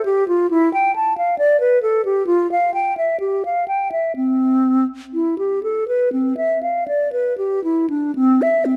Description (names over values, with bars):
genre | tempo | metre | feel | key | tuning
classical, baroque-style fantasia for unaccompanied flute | 57-68 BPM | 4/4 | rubato | C major | A4 = 440 Hz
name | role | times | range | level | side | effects
mellow hollow silver concert flute | solo | 0.0-8.8 s | C4 to A5 | -18 LUFS | equal | none
room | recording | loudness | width
light reverb | close, detailed microphones, faint mains hum | -19 LUFS | mono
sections
0.0-8.1 A section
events
none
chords
none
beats
| 0.50 1.39 2.28 3.21 | 4.16 5.14 6.13 7.11 | 8.15